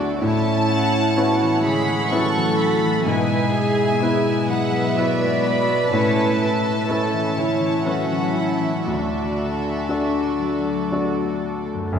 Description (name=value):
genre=cinematic, emotional film score for orchestra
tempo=58-64 BPM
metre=3/4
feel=rubato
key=A major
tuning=A4 = 437 Hz
part: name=clear studio violin section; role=second line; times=0.0-12.0 s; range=G#4 to F#5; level=-27 LUFS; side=equal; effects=none
part: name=clear grand piano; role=accompaniment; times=0.0-12.0 s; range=D2 to B4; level=-24 LUFS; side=equal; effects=none
part: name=rich studio viola section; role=accompaniment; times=0.0-12.0 s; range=G#3 to G#4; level=-26 LUFS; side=right 2 dB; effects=none
part: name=concert harp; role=arpeggios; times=0.0-12.0 s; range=F#2 to G#5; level=-25 LUFS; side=left 5 dB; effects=none
part: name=warm studio cello section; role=bass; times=0.0-12.0 s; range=F#2 to B4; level=-26 LUFS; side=right 3 dB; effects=none
part: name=clear studio violin section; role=melody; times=0.2-10.9 s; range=E5 to C#6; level=-27 LUFS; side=left 1 dB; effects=none
part: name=dark studio double bass section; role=bass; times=11.9-12.0 s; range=F#1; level=-32 LUFS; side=right 6 dB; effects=none
room=wet scoring stage reverb, RT60 1.9 s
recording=heard from further back in the room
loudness=-18 LUFS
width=side -7 dB against mid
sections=0.0-11.9 A section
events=none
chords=0.2 Aadd9; 3.1 E/G#; 5.9 Aadd9; 8.9 Dadd9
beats=| 0.22 1.17 2.12 | 3.07 4.02 4.97 | 5.93 6.88 7.86 | 8.86 9.89 10.91 | 11.92